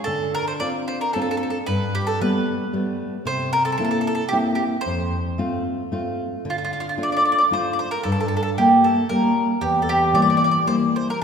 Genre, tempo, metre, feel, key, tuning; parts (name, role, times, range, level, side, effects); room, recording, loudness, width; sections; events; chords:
italian folk, Italian serenade; 113 BPM; 3/4; straight; F major, D minor from 6.5 s; A4 = 440 Hz
mandolin; melody; 0.0-11.2 s; F4 to D5; -21 LUFS; right 1 dB
nylon-string guitar; accompaniment; 0.1-11.1 s; E2 to F4; -22 LUFS; left 2 dB
wet concert hall reverb, RT60 1.9 s; recorded in a church or concert hall; -19 LUFS; side -7 dB against mid
0.0-6.5 A section; 6.5-11.2 B section
0.1 Dm7; 1.7 Gadd9; 3.3 C7; 4.8 F; 6.5 Dm; 8.1 Gmadd9; 9.6 Edim